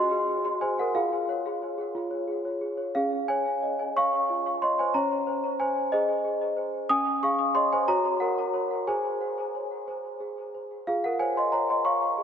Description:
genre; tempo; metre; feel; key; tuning
classical, lullaby for celesta; 60 BPM (dotted quarters); 6/8; straight; Db major; A4 = 438 Hz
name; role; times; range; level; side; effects
celesta; solo; 0.0-12.2 s; Db4 to Eb6; -24 LUFS; equal; ping-pong delay
room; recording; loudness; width
wet lush hall reverb, RT60 1.9 s, small room reverb; dreamy mix soaked in reverb; -24 LUFS; side -8 dB against mid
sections
0.0-3.0 A section; 3.0-12.2 A section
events
none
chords
0.0 Ab7/Gb; 0.9 Db/F; 3.0 Db; 5.0 Ab/Db; 6.9 Db; 7.9 Gb; 8.9 Ab; 10.9 Db/F

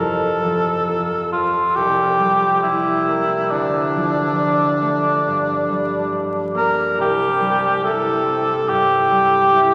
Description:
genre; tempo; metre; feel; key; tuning
classical, romantic duo for cor anglais and harp; 69 BPM; 4/4; rubato; F major; A4 = 440 Hz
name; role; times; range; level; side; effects
warm cor anglais; melody; 0.0-9.7 s; D4 to Bb4; -19 LUFS; equal; none
concert harp; accompaniment; 0.0-9.7 s; C2 to F4; -25 LUFS; equal; none
room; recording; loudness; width
wet cathedral reverb, RT60 6.1 s; vinyl crackle; -18 LUFS; mono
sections
0.0-9.7 A section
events
none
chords
0.0 F; 1.8 C7; 3.5 Dm; 5.3 Gm; 7.0 C

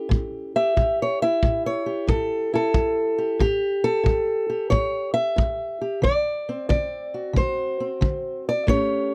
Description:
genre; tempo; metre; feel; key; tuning
acoustic country blues, solo or duo; 91 BPM; 4/4; swing 67% on 8ths; unclear; A4 = 445 Hz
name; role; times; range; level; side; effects
fingerpicked old ladder-braced acoustic guitar; melody; 0.0-9.1 s; A2 to E5; -24 LUFS; equal; none
kick drum; drums; 0.1-8.9 s; none; -25 LUFS; equal; none
room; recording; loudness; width
little or no reverb; none; -23 LUFS; mono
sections
0.0-3.4 A section; 3.4-9.1 B section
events
steel-string acoustic guitar solo 0.0-3.4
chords
0.0 A7; 3.4 A5; 6.0 D7

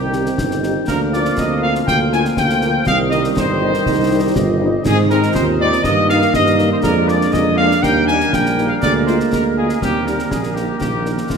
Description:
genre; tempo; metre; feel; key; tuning
military-style march for wind band; 121 BPM; 2/4; straight; Eb major; A4 = 440 Hz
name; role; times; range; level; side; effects
mellow trumpet section; melody; 0.0-11.4 s; F4 to Ab5; -19 LUFS; left 1 dB; none
dark euphonium; second line; 0.0-11.4 s; Bb3 to F4; -22 LUFS; right 2 dB; none
warm woodwind section; second line; 0.0-11.4 s; Eb4 to G5; -26 LUFS; left 1 dB; none
warm trombone section; sustained chords; 0.0-11.4 s; Eb3 to C4; -22 LUFS; right 3 dB; none
mellow tuba; bass; 0.0-11.4 s; G1 to Ab2; -20 LUFS; right 2 dB; none
dark French horn section; accompaniment; 0.1-11.1 s; G3 to G4; -26 LUFS; left 5 dB; none
concert snare drum, concert bass drum and clash cymbals; drums; 0.1-11.4 s; none; -25 LUFS; left 2 dB; none
room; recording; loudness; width
wet concert hall reverb, RT60 2.2 s; minimal, uncompressed stereo recording; -14 LUFS; side -6 dB against mid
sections
0.0-11.4 A section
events
none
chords
0.0 Cm; 0.9 Bb/D; 2.9 Cm; 4.8 Ab; 5.8 Eb/G; 6.8 Bb7/F; 7.8 Eb; 8.8 Bb7/D; 9.8 Eb; 10.8 Bbsus4

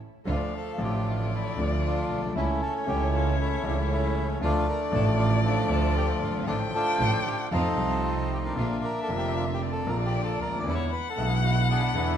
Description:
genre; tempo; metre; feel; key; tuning
tango; 116 BPM; 4/4; rubato; D harmonic minor; A4 = 440 Hz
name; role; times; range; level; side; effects
bandoneon; melody; 0.3-12.2 s; F3 to D5; -29 LUFS; equal; none
warm violin; second line; 0.3-12.2 s; C#5 to G5; -34 LUFS; left 5 dB; none
warm grand piano; accompaniment; 0.3-12.2 s; F1 to F4; -31 LUFS; left 2 dB; none
rich chamber string section; stabs; 0.3-12.2 s; G#3 to F4; -38 LUFS; right 1 dB; none
warm double bass; bass; 0.3-12.2 s; F1 to F2; -28 LUFS; right 2 dB; none
room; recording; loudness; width
light reverb; minimal, uncompressed stereo recording; -24 LUFS; side -9 dB against mid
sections
0.3-12.2 A section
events
none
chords
0.3 Dm; 2.4 A/C#; 4.4 Dm; 6.5 Dm/A; 7.5 F7; 8.6 Bb; 10.7 E7

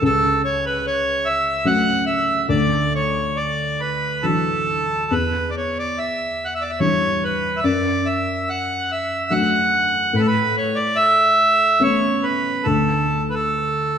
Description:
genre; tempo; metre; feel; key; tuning
celtic folk, Celtic slow air; 71 BPM; 3/4; rubato; unclear; A4 = 440 Hz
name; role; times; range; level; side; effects
accordion; melody; 0.0-14.0 s; A4 to F#5; -19 LUFS; right 1 dB; none
felt-muted upright piano; accompaniment; 0.0-14.0 s; C#2 to D4; -22 LUFS; left 2 dB; none
room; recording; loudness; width
wet scoring stage reverb, RT60 1.7 s; recorded in a church or concert hall; -17 LUFS; side -8 dB against mid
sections
0.0-14.0 A section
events
none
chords
0.0 F#m/C#; 2.5 Dadd9; 5.1 Em7; 7.7 D/F#; 10.1 Aadd9; 12.7 D5

